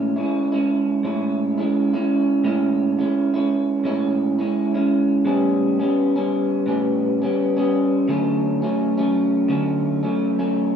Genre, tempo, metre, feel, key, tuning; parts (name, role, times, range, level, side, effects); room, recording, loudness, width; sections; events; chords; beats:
indie pop; 85 BPM; 4/4; swing 55% on 16ths; A major; A4 = 443 Hz
electric guitar through a small old amp; solo; 0.0-10.8 s; A2 to E4; -18 LUFS; right 1 dB; lush chorus, vibrato effect, analog delay
moderate studio reverb, RT60 0.6 s; rough home demo mix, cassette tape, studio reverb; -18 LUFS; side -8 dB against mid
0.0-10.8 A section
0.0 Amaj7; 5.3 A9; 8.1 Dmaj7
0.32 1.03 1.74 | 2.44 3.14 3.85 4.55 | 5.26 5.96 6.67 7.37 | 8.07 8.78 9.48 10.19